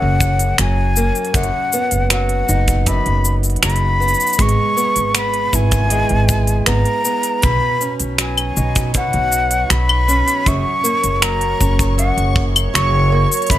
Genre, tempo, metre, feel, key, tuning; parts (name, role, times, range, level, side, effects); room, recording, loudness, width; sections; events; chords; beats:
folktronica; 79 BPM; 4/4; straight; B major; A4 = 439 Hz
breathy mellow jazz flute; melody; 0.0-13.6 s; F#5 to C#6; -19 LUFS; left 1 dB
fingerpicked acoustic archtop guitar; arpeggios; 0.0-13.6 s; F#2 to E4; -22 LUFS; right 2 dB; tape echo
upright bass; bass; 0.0-13.6 s; F#1 to B1; -18 LUFS; equal; tube saturation
kick drum; drums; 0.2-13.6 s; -21 LUFS; equal
organic electronic drum kit; drums; 0.2-13.6 s; cabasa, claves, finger snaps, hi-hat; -19 LUFS; left 1 dB; overdrive
backwards swelling texture; texture; 8.5-13.6 s; C#5 to C#6; -28 LUFS; right 5 dB; built-in reverb
light reverb; -14 LUFS; side -13 dB against mid
0.0-13.6 A section
0.0 F#; 1.4 B/F#; 4.4 E/G#; 7.4 Badd9; 10.5 F#
0.59 | 1.35 2.11 2.87 3.63 | 4.39 5.15 5.91 6.67 | 7.43 8.19 8.95 9.71 | 10.46 11.22 11.98 12.74 | 13.50